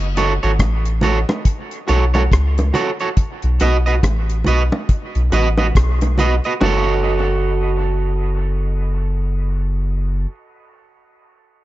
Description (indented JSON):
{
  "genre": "dub reggae",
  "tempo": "70 BPM",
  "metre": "4/4",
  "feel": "swing 60% on 16ths",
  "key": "F# dorian",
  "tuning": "A4 = 441 Hz",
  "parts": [
    { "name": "soft dub sub bass", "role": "bass", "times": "0.0-10.3 s", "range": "F#1 to C#2", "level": "-17 LUFS", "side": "equal", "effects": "none" },
    { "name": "electric guitar at the edge of break-up", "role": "accompaniment", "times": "0.2-10.3 s", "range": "F#4 to D#5", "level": "-21 LUFS", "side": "right 4 dB", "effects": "dub echo" },
    { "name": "deep reggae drum kit", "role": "drums", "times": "0.2-6.6 s", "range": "hi-hat, kick drum, rim click", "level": "-19 LUFS", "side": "equal", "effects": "none" },
    { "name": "bongos", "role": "percussion", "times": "0.2-7.0 s", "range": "none", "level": "-25 LUFS", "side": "right 1 dB", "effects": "dub echo" }
  ],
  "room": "small room ambience",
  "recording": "nothing above 7.9 kHz",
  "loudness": "-15 LUFS",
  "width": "side -16 dB against mid",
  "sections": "0.0-6.6 A section; 6.6-10.0 B section",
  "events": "none",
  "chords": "0.0 F#m; 3.2 B; 6.6 F#m"
}